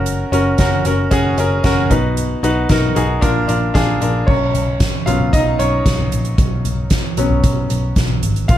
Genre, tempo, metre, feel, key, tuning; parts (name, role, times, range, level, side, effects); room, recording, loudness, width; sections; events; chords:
piano-driven pop; 114 BPM; 4/4; straight; A4 = 440 Hz
bright concert grand piano; accompaniment; 0.0-8.6 s; Bb2 to F5; -18 LUFS; left 1 dB
vintage muted picked electric bass; bass; 0.0-8.6 s; Gb1 to B1; -19 LUFS; equal
soft-mallet drum kit; drums; 0.1-8.6 s; crash cymbal, hi-hat, kick drum, snare drum, toms; -18 LUFS; equal
moderate large studio reverb, RT60 0.9 s, small room ambience; -14 LUFS; side -12 dB against mid
0.0-4.3 A section; 4.3-8.6 B section
grand piano solo 4.3-8.6
0.0 Gb; 1.9 B; 3.2 Bb; 4.3 Bsus2